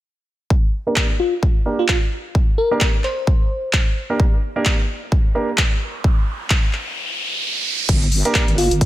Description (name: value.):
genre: bass house.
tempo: 130 BPM.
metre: 4/4.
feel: swing 58% on 16ths.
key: G minor.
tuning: A4 = 443 Hz.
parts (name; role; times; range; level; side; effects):
electronic kick drum; drums; 0.5-8.9 s; none; -17 LUFS; equal; none.
warm grand piano; stabs; 0.9-5.5, 8.3-8.4 s; Bb3 to Bb4; -23 LUFS; right 2 dB; sidechain pumping, low-pass filter, dub echo.
big-room dance drum kit; drums; 1.0-8.9 s; crash cymbal, handclaps, hi-hat; -22 LUFS; equal; none.
bell-like FM electric piano; melody; 1.2-3.7, 8.6-8.7 s; F4 to C5; -22 LUFS; left 1 dB; chorus, phaser.
riser; sound effects; 5.8-7.9 s; none; -25 LUFS; right 2 dB; none.
wobble bass; bass; 7.9-8.9 s; G1; -20 LUFS; equal; chorus, sidechain pumping.
room: digital ambience.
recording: none.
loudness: -16 LUFS.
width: side -15 dB against mid.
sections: 0.5-7.9 A section.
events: filter sweep on grand piano 0.5-7.9; riser 5.8-7.9; break 7.0-7.9.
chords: 0.5 Gm.